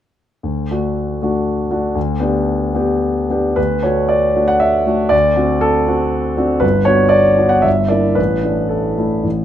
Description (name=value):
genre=classical, romantic character piece for solo piano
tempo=105-124 BPM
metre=3/4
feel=rubato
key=D major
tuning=A4 = 440 Hz
part: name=warm concert grand piano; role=solo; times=0.4-9.4 s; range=G1 to F#5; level=-13 LUFS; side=equal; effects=none
room=light reverb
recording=none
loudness=-13 LUFS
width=side -10 dB against mid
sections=0.4-3.6 A section; 3.6-9.4 B section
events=none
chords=0.4 D; 2.0 G/D; 3.6 D; 5.1 D7; 6.6 Gmaj7; 7.7 Em7b5/G; 8.2 Asus4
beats=| 0.45 0.97 1.47 | 1.96 2.46 3.01 | 3.57 4.11 4.62 | 5.12 5.63 6.13 | 6.63 7.13 7.65 | 8.18 8.71 9.25